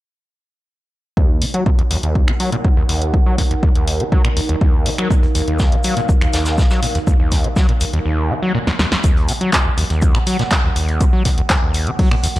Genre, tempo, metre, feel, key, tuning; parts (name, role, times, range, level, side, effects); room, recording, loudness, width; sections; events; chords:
acid house; 122 BPM; 4/4; straight; Eb minor; A4 = 440 Hz
overdriven acid bass; riff; 1.2-12.4 s; Eb2 to Gb3; -19 LUFS; equal; distortion, tape echo
electronic kick drum; drums; 1.2-12.1 s; -15 LUFS; equal
airy breathy pad; texture; 1.2-12.4 s; Eb4 to Gb5; -27 LUFS; right 1 dB; chorus, sidechain pumping
punchy analog drum machine; drums; 1.4-12.4 s; finger snaps, handclaps, hi-hat, snare drum; -21 LUFS; left 1 dB
vintage brush drum kit; drums; 5.1-12.4 s; hi-hat, shaker, snare drum; -30 LUFS; equal; sidechain pumping on hats, high-pass filter on hats, high-pass filter on snare, sidechain pumping on perc, high-pass filter on perc, high-pass filter on room
light reverb; -14 LUFS; side -16 dB against mid
1.2-9.0 A section; 9.0-12.4 B section
fade-in on analog synth pad 1.2-9.0; filter sweep on acid bass 1.2-9.0; drum fill 8.7-9.0
1.2 Ebm